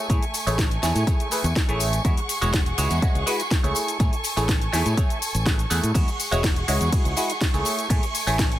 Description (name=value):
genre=filtered disco house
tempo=123 BPM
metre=4/4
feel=straight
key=unclear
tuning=A4 = 439 Hz
part: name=overdriven clav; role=accompaniment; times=0.0-8.4 s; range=G#3 to F#5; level=-27 LUFS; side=right 1 dB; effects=phaser, sidechain pumping
part: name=dark symphonic violin section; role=sustained chords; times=0.0-8.6 s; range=A3 to C#6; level=-30 LUFS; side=right 1 dB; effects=sidechain pumping
part: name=modern bright fingered electric bass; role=bass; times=0.1-8.6 s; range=E1 to A2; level=-25 LUFS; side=equal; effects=sidechain pumping
part: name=electronic kick drum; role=drums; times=0.1-8.5 s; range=none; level=-22 LUFS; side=equal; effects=overdrive
part: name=house drum kit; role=drums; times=0.1-8.6 s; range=cabasa, hi-hat, ride cymbal, snare drum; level=-28 LUFS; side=left 2 dB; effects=overdrive, sidechain pumping on hats, sidechain pumping on perc, sidechain pumping on cymbals
part: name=tambourine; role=percussion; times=0.1-8.5 s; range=none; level=-36 LUFS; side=right 3 dB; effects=sidechain pumping on perc
room=little or no reverb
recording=none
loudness=-20 LUFS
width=side -13 dB against mid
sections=0.0-8.6 A section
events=none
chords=0.0 Amaj7; 2.0 E69; 3.8 Amaj7; 6.0 E69; 7.7 Amaj7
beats=| 0.10 0.58 1.07 1.56 | 2.05 2.54 3.02 3.51 | 4.00 4.49 4.97 5.46 | 5.95 6.44 6.93 7.41 | 7.90 8.39